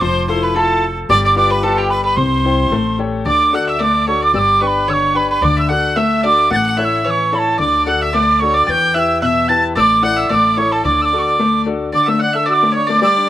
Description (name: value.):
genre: celtic folk, Celtic reel.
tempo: 222 BPM.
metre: 4/4.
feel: swing 54% on 8ths.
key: D major from 3.3 s.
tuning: A4 = 444 Hz.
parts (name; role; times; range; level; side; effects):
reedy wooden whistle; melody; 0.0-13.3 s; G5 to A6; -15 LUFS; right 2 dB; slapback echo.
bright fiddle; second line; 0.0-13.3 s; G4 to A5; -24 LUFS; left 5 dB; slapback echo.
mandolin; second line; 0.0-13.2 s; G4 to A5; -21 LUFS; right 2 dB; slapback echo.
bright concert grand piano; accompaniment; 0.0-13.3 s; B2 to D5; -19 LUFS; left 4 dB; slapback echo.
upright bass; bass; 0.0-11.9 s; F1 to E2; -24 LUFS; equal; none.
room: little or no reverb.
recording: recorded outdoors, with no room sound.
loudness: -12 LUFS.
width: side -13 dB against mid.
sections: 0.0-3.3 A section; 3.3-11.9 B section; 11.9-13.3 B section.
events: none.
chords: 0.0 Fmaj7; 1.1 G7; 2.2 C; 2.7 A7; 3.3 D; 4.3 G; 5.4 D; 6.5 A; 7.6 D; 8.7 Em; 9.8 Asus4; 10.3 A; 10.8 D.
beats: | 0.01 0.28 0.55 0.82 | 1.09 1.36 1.64 1.91 | 2.17 2.44 2.71 2.99 | 3.26 3.53 3.80 4.07 | 4.34 4.61 4.88 5.15 | 5.42 5.69 5.96 6.24 | 6.51 6.78 7.05 7.32 | 7.59 7.86 8.13 8.41 | 8.68 8.95 9.22 9.49 | 9.76 10.03 10.30 10.57 | 10.85 11.12 11.39 11.66 | 11.93 12.20 12.47 12.74 | 13.01 13.28.